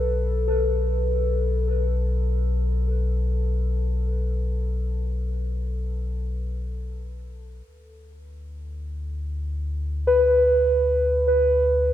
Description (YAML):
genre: ambient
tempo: free time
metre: none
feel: none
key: unclear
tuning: A4 = 441 Hz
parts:
  - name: muted felt-like synth keys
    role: arpeggios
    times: 0.0-11.9 s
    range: A4 to B4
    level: -23 LUFS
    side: equal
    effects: chorus, tape echo
  - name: warm sub bass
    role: bass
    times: 0.0-11.9 s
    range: B1 to D2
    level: -25 LUFS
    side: left 1 dB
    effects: none
room: moderate plate reverb, RT60 2.2 s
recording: echo-heavy mix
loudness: -21 LUFS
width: side -12 dB against mid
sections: 0.0-11.9 A section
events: none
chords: 0.0 B5; 7.7 Bm/D